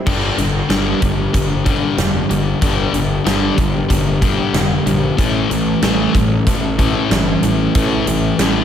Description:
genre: quiet-loud alternative rock.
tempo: 94 BPM.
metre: 4/4.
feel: straight.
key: unclear.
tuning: A4 = 435 Hz.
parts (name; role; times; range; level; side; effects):
mellow electric guitar; arpeggios; 0.0-8.6 s; G2 to A4; -22 LUFS; right 2 dB; lush chorus, digital delay, slapback echo.
thick fuzz guitar; riff; 0.1-8.6 s; G2 to A3; -18 LUFS; left 6 dB; distortion.
fuzz picked electric bass; bass; 0.1-8.6 s; F1 to Bb1; -21 LUFS; equal; overdrive.
big rock drum kit; drums; 0.1-8.5 s; crash cymbal, hi-hat, kick drum, snare drum; -18 LUFS; right 2 dB; none.
room: moderate lush hall reverb, RT60 2.2 s.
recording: big arena sound.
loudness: -14 LUFS.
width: side -9 dB against mid.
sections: 0.1-8.6 A section.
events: none.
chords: 0.1 Gm; 5.2 A.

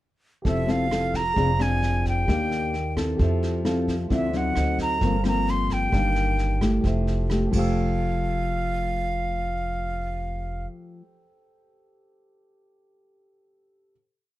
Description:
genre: bossa nova.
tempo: 131 BPM.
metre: 4/4.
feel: straight.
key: F major.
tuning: A4 = 438 Hz.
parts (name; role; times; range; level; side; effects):
dark baby grand piano; accompaniment; 0.4-13.9 s; F4 to E6; -35 LUFS; right 2 dB; none.
breathy silver concert flute; melody; 0.5-10.7 s; E5 to C6; -27 LUFS; right 1 dB; none.
nylon-string guitar; accompaniment; 0.5-11.1 s; G2 to A4; -27 LUFS; left 2 dB; none.
upright bass; bass; 0.5-10.6 s; F1 to F2; -26 LUFS; equal; none.
vintage brush drum kit; drums; 0.5-7.6 s; crash cymbal, kick drum, rim click, snare drum; -32 LUFS; equal; none.
room: light reverb.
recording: dark, warm production.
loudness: -22 LUFS.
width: side -15 dB against mid.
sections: 0.4-7.8 A section; 7.8-11.4 final hit.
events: grand piano fill 3.4-4.1.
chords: 0.4 Fmaj7; 1.4 Fm69; 2.3 Ebmaj7; 3.2 Fmaj7; 4.1 Dm9; 4.6 D7b9; 5.0 Gm11; 5.9 Ebmaj7/G; 6.8 Fmaj9.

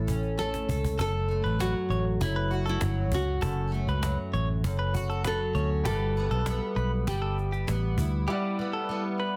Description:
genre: acoustic pop.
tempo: 99 BPM.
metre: 4/4.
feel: straight.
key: unclear.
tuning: A4 = 440 Hz.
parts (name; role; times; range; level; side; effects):
nylon-string guitar; melody; 0.0-9.4 s; C#4 to A4; -36 LUFS; equal; none.
fingerpicked plugged-in steel-string acoustic guitar; accompaniment; 0.0-9.4 s; F#2 to A4; -35 LUFS; equal; double-tracked.
vintage muted fingered electric bass; bass; 0.0-8.3 s; F#1 to D2; -31 LUFS; equal; none.
cajon; drums; 0.1-8.1 s; none; -37 LUFS; equal; none.
direct-recorded clean electric guitar; arpeggios; 1.0-9.3 s; G4 to C#5; -38 LUFS; equal; none.
bright upright piano; accompaniment; 5.8-9.4 s; G3 to F#5; -41 LUFS; equal; none.
room: moderate studio reverb, RT60 0.6 s.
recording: dense, heavily limited modern master.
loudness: -28 LUFS.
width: mono.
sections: 1.0-9.4 A section.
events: drum fill 0.4-1.0.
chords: 0.0 A; 1.0 F#m; 5.9 Emadd9/G.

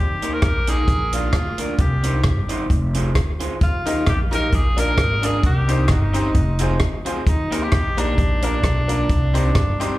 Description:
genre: ska.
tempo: 132 BPM.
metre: 4/4.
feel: swing 55% on 8ths.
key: Eb major.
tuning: A4 = 441 Hz.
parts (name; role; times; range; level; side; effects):
warm tenor saxophone; melody; 0.0-10.0 s; D4 to Bb4; -25 LUFS; equal; analog delay, slapback echo.
upright bass; bass; 0.0-9.9 s; F1 to Eb2; -21 LUFS; equal; none.
electric guitar through a small old amp; accompaniment; 0.2-10.0 s; Bb3 to C5; -27 LUFS; right 2 dB; analog delay, slapback echo.
compact cocktail drum kit; drums; 0.2-9.9 s; hi-hat, kick drum, rim click; -20 LUFS; equal; none.
bright upright piano; stabs; 3.9-9.9 s; Bb3 to Eb5; -27 LUFS; left 3 dB; analog delay, slapback echo.
room: small room ambience.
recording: live gig heard through the venue's PA, club reverb.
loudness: -17 LUFS.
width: side -16 dB against mid.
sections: 0.0-10.0 A section.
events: none.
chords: 0.0 Eb; 0.9 Bb; 1.8 Cm; 2.7 Fm; 3.6 Eb; 4.5 Bb; 5.4 Cm; 6.4 Fm; 7.3 Eb; 8.2 Bb; 9.1 Cm.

